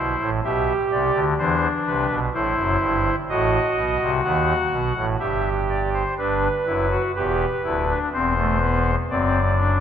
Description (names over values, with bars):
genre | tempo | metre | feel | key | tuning
classical, baroque-style 3-part fugue for pipe organ | 62 BPM | 3/4 | straight | G major from 6.2 s | A4 = 440 Hz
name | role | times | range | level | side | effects
pipe organ, soft reed | solo | 0.0-9.8 s | D1 to F#5 | -19 LUFS | equal | none
room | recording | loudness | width
wet concert hall reverb, RT60 1.9 s | none | -19 LUFS | side -8 dB against mid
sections
0.0-6.2 A section; 6.2-9.8 B section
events
none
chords
0.4 Em/B; 2.3 Am; 3.3 B7/A; 5.2 Em/G; 6.2 G; 8.1 C/E; 9.1 D7/F#